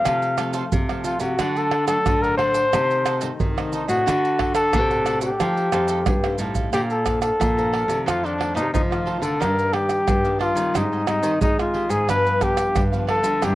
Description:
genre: samba and choro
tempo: 90 BPM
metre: 4/4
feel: straight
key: Bb major from 6.7 s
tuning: A4 = 439 Hz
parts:
  - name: breathy trumpet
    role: melody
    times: 0.0-13.6 s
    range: D4 to F5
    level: -21 LUFS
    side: left 1 dB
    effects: cassette tape
  - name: cavaquinho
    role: accompaniment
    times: 0.0-13.6 s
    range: D4 to Bb5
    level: -32 LUFS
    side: right 6 dB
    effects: cassette tape
  - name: nylon-string guitar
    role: accompaniment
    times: 0.0-13.6 s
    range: F2 to C5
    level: -32 LUFS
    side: left 5 dB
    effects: cassette tape
  - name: nylon-string guitar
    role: bass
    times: 0.1-13.6 s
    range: F2 to Ab3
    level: -25 LUFS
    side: equal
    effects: none
  - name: maracas, surdo, pandeiro and tamborim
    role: percussion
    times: 0.1-13.6 s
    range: none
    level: -25 LUFS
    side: right 2 dB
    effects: none
room: light reverb, small room ambience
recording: home recording on cassette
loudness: -19 LUFS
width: side -16 dB against mid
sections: 0.0-6.7 A section; 6.7-13.6 B section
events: drum fill 6.1-6.7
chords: 0.1 F/C; 1.4 D; 2.7 Adim/C; 4.1 D; 5.4 F9; 6.7 Bbmaj9; 8.1 F7; 9.4 Ebmaj7/G; 10.7 Abmaj7; 12.1 G7

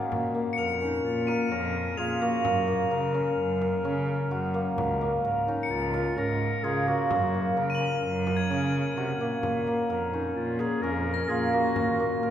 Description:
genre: contemporary instrumental, chamber music in an uneven meter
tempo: 129 BPM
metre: 5/4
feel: straight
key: Bb minor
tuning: A4 = 442 Hz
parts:
  - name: hammered dulcimer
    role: arpeggios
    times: 0.0-12.3 s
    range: Ab3 to Bb4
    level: -27 LUFS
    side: equal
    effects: none
  - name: warm cello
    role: bass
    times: 0.0-12.3 s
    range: Db2 to Db3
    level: -30 LUFS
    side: equal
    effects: none
  - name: frame drum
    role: percussion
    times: 0.1-12.0 s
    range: none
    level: -39 LUFS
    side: left 3 dB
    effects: none
  - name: crotales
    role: texture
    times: 0.5-12.0 s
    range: Ab6 to Gb7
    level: -36 LUFS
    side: left 3 dB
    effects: none
  - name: mellow clarinet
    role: melody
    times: 0.8-12.3 s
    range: Eb4 to Bb4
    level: -33 LUFS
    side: left 1 dB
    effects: none
room: wet concert hall reverb, RT60 2.3 s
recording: recorded in a church or concert hall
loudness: -25 LUFS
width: side -10 dB against mid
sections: 0.1-12.3 A section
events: none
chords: 0.1 Bbm; 2.4 Gb; 4.8 Db6; 7.1 Gb; 9.4 Bbm; 11.8 Ebm

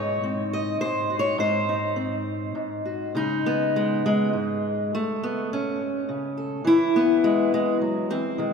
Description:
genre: folk, solo fingerstyle acoustic guitar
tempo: 103 BPM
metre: 3/4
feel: rubato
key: C# minor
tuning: A4 = 440 Hz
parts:
  - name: fingerpicked steel-string acoustic guitar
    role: solo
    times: 0.0-8.5 s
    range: G#2 to D#5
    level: -22 LUFS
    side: left 1 dB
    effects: none
room: wet cathedral reverb, RT60 4.1 s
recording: recorded in a church or concert hall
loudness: -22 LUFS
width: side -6 dB against mid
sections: 0.0-3.2 A section; 3.2-8.5 B section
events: none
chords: 0.0 G#7; 3.2 C#sus2; 4.9 Aadd9; 6.7 Esus2

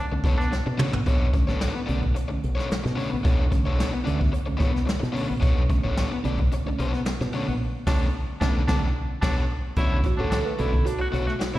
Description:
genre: funk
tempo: 110 BPM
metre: 4/4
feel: straight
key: B minor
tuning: A4 = 439 Hz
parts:
  - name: clear baritone saxophone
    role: second line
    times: 0.0-0.6, 7.9-11.6 s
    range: D4 to F#4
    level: -33 LUFS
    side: right 1 dB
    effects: slapback echo
  - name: overdriven electric guitar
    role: accompaniment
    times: 0.0-11.6 s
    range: A3 to D5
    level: -30 LUFS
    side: left 4 dB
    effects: slapback echo
  - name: mellow tine electric piano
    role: stabs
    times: 0.1-11.6 s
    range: B2 to B4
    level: -32 LUFS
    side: right 3 dB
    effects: slow stereo tremolo, slapback echo
  - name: fingered electric bass with an envelope filter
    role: bass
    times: 0.1-11.6 s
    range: A1 to B2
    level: -25 LUFS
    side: equal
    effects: none
  - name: jazz brush drum kit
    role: drums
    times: 0.2-11.6 s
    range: crash cymbal, hi-hat, kick drum, snare drum, toms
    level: -25 LUFS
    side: equal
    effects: none
room: studio ambience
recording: live gig heard through the venue's PA, recital hall reverb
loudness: -22 LUFS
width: side -16 dB against mid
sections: 0.0-9.8 A section; 9.8-11.6 B section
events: band accent 0.0-1.1, 7.6-9.8; drum fill 0.5-1.1; tine electric piano solo 9.8-11.6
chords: 0.0 Bm9

